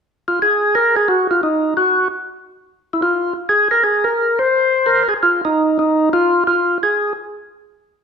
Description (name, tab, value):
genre	jazz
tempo	174 BPM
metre	4/4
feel	swing 62% on 8ths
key	F minor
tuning	A4 = 440 Hz
part	percussive tonewheel organ	solo	0.3-7.1 s	Eb4 to C5	-14 LUFS	equal	slow rotary speaker
room	wet large studio reverb, RT60 1.2 s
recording	band playing live in one room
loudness	-14 LUFS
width	side -6 dB against mid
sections	0.0-5.2 A section; 5.2-8.0 B section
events	none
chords	none